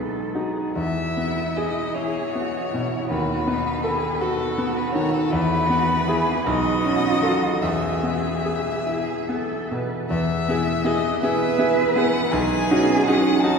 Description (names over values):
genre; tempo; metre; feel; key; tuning
classical, slow romantic movement for piano trio; 47-57 BPM (dotted quarters); 6/8; rubato; E major; A4 = 440 Hz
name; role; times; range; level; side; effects
warm cello; second line; 0.0-13.6 s; D#4 to B4; -27 LUFS; right 4 dB; none
bright grand piano; accompaniment; 0.0-13.6 s; B1 to A4; -22 LUFS; equal; none
warm violin; melody; 0.8-13.6 s; A4 to A5; -26 LUFS; left 2 dB; none
room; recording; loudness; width
wet cathedral reverb, RT60 5.2 s; heard from further back in the room; -20 LUFS; side -5 dB against mid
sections
0.0-10.1 A section; 10.1-13.6 B section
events
none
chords
0.0 B; 0.8 E; 3.1 B7/D#; 5.3 E; 6.5 B9; 7.6 E; 12.3 Badd9